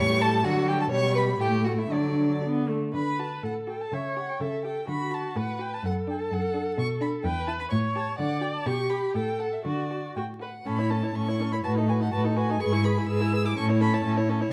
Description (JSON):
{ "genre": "quick classical-period movement for string quartet", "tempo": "125 BPM", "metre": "2/4", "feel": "rubato", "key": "D major, A major from 10.7 s", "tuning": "A4 = 441 Hz", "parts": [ { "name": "warm violin", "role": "melody", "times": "0.0-14.1 s", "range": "D5 to E6", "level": "-35 LUFS", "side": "equal", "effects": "none" }, { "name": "warm violin", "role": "second line", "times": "0.0-14.5 s", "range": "D4 to C#5", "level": "-34 LUFS", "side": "equal", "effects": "none" }, { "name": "rich viola", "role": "accompaniment", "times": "0.0-14.5 s", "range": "F#3 to D5", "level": "-33 LUFS", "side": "equal", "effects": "none" }, { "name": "warm cello", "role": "bass", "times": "0.0-14.5 s", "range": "E2 to D3", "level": "-30 LUFS", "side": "equal", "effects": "none" } ], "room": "moderate recital hall reverb, RT60 1.4 s", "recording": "close, detailed microphones, vinyl crackle", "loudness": "-27 LUFS", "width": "mono", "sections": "0.0-2.9 A section; 2.9-10.7 A section; 10.7-14.5 B section", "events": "none", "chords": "0.4 D; 0.9 G/B; 1.4 Emadd11/A; 1.9 D; 3.9 A7/C#; 4.9 D; 5.8 D/F#; 6.8 Bm7; 7.2 Em; 7.7 A7; 8.2 D; 8.7 G/B; 9.1 Emadd11/A; 9.6 D; 10.7 A; 11.6 B7/A; 12.6 E/G#; 13.6 A" }